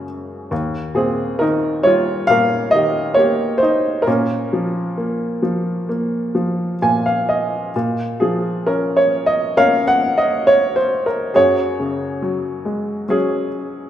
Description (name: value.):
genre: classical, lyrical solo piano.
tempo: 67 BPM.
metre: 4/4.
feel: rubato.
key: Bb minor.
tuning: A4 = 440 Hz.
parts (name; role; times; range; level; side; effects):
warm upright piano; solo; 0.0-13.9 s; Eb2 to Ab5; -16 LUFS; equal; none.
room: wet recital hall reverb, RT60 1.8 s.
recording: recorded in a church or concert hall.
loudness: -16 LUFS.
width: side -10 dB against mid.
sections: 0.0-7.7 A section; 7.7-13.9 B section.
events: upright piano fill 6.3-7.7.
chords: 0.0 Gbsus2; 0.5 Eb; 4.1 Bbm; 11.3 Gbsus2.